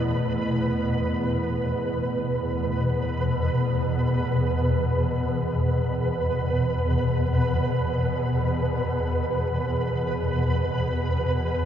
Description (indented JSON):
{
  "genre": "dark ambient drone",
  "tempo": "free time",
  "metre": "none",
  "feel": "none",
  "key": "unclear",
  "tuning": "A4 = 440 Hz",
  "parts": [
    { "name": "deep dark ambient pad", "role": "sustained chords", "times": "0.0-2.2 s", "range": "A3 to B4", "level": "-32 LUFS", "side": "right 2 dB", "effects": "chorus, built-in reverb" },
    { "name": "swarming drone", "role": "drone", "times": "0.0-11.7 s", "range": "E2 to B2", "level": "-24 LUFS", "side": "left 1 dB", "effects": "built-in reverb" },
    { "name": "flickering grainy texture", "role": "texture", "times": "0.0-11.7 s", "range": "B4", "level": "-29 LUFS", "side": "right 2 dB", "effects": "built-in reverb" }
  ],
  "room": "wet huge ambient reverb, RT60 8.2 s",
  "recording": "nothing above 7.6 kHz",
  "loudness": "-22 LUFS",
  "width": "side -9 dB against mid",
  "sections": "0.0-2.2 A section; 2.2-11.7 B section",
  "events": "none",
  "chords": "0.0 A5; 2.2 E5",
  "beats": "free time"
}